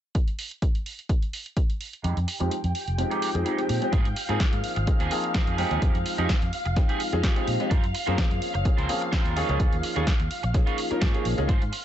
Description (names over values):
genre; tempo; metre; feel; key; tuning
filtered disco house; 127 BPM; 4/4; swing 54% on 16ths; Ab major; A4 = 441 Hz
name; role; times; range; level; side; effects
electronic kick drum; drums; 0.1-11.6 s; none; -24 LUFS; equal; none
punchy analog drum machine; drums; 0.1-11.8 s; hi-hat, snare drum; -33 LUFS; right 1 dB; sidechain pumping on hats
string machine, full ensemble; sustained chords; 2.0-11.8 s; F5 to C6; -34 LUFS; left 1 dB; ensemble chorus, sidechain pumping, low-pass filter
electric guitar at the edge of break-up; riff; 2.0-11.8 s; Ab3 to Db5; -33 LUFS; right 6 dB; analog chorus, sidechain pumping, low-pass filter
fingered electric bass; bass; 2.0-11.7 s; F1 to Bb2; -28 LUFS; equal; sidechain pumping, low-pass filter
clear baby grand piano; accompaniment; 2.4-11.5 s; F3 to G5; -30 LUFS; left 1 dB; phaser, sidechain pumping, low-pass filter
room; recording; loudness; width
little or no reverb; nothing above 8.0 kHz; -23 LUFS; side -11 dB against mid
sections
0.2-3.9 A section; 3.9-11.8 B section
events
kick drops out 2.0-3.9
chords
0.2 N.C.; 1.8 Fm9; 3.9 Ab6; 5.6 Fm9; 7.7 Gbmaj9#11; 9.4 Eb9sus4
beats
| 0.15 0.62 1.10 1.57 | 2.04 2.51 2.99 3.46 | 3.93 4.40 4.88 5.35 | 5.82 6.29 6.77 7.24 | 7.71 8.18 8.66 9.13 | 9.60 10.07 10.55 11.02 | 11.49